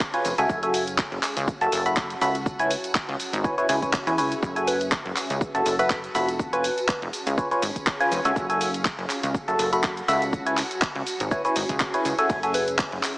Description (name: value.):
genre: piano house.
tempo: 122 BPM.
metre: 4/4.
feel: swing 55% on 16ths.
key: unclear.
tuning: A4 = 440 Hz.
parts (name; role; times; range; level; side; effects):
electronic kick drum; drums; 0.0-12.9 s; none; -28 LUFS; equal; none.
house drum kit; drums; 0.0-13.1 s; handclaps, hi-hat, ride cymbal, shaker; -28 LUFS; equal; none.
tambourine; percussion; 0.0-13.1 s; none; -41 LUFS; right 1 dB; none.
granular cloud pad; texture; 0.1-13.2 s; C#4 to A5; -33 LUFS; equal; built-in reverb, sidechain pumping.
barking FM electric piano; riff; 0.1-12.6 s; E4 to B5; -24 LUFS; equal; phaser, sidechain pumping, tape echo.
plucky analog bass; bass; 0.2-13.0 s; E#1 to E2; -30 LUFS; equal; sidechain pumping.
soft struck synth lead; melody; 4.7-7.0, 12.5-12.7 s; B4; -29 LUFS; equal; chorus, tape echo.
room: moderate lush hall reverb, RT60 1.9 s.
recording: heavily compressed radio sound, small speaker sound.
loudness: -22 LUFS.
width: side -21 dB against mid.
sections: 0.0-13.2 A section.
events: none.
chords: 0.5 F#m9; 2.5 C#m7; 4.4 C#7; 8.4 F#m9; 10.3 C#m7; 12.3 C#5.